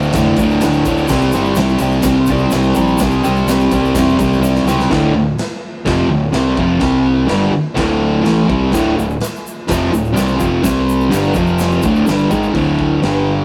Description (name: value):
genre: garage rock duo or trio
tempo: 126 BPM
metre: 4/4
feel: straight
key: D minor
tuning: A4 = 440 Hz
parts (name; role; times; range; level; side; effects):
- fuzz guitar; riff; 0.0-13.4 s; D2 to C4; -15 LUFS; equal; distortion
- growling fingered electric bass; bass; 0.0-13.4 s; D1 to C#2; -24 LUFS; equal; overdrive
- egg shaker; percussion; 0.0-4.9, 8.7-12.5 s; none; -36 LUFS; equal; none
- raw garage drum kit; drums; 0.1-13.1 s; crash cymbal, hi-hat, kick drum, ride cymbal, snare drum; -25 LUFS; equal; none
room: moderate studio reverb, RT60 0.6 s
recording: rough rehearsal-room recording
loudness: -15 LUFS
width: mono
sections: 0.0-4.9 A section; 4.9-12.6 B section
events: drum fill 4.4-4.9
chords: 0.0 Dm; 1.1 C5; 4.9 Dm; 6.8 C5; 7.3 Dm; 10.6 C5; 11.1 G5; 11.4 F5; 11.8 D5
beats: 0.14 0.62 | 1.10 1.57 2.05 2.52 | 3.00 3.48 3.95 4.43 | 4.91 5.38 5.86 6.34 | 6.81 7.29 7.77 8.25 | 8.73 9.21 9.68 10.16 | 10.64 11.12 11.60 12.07 | 12.55 13.03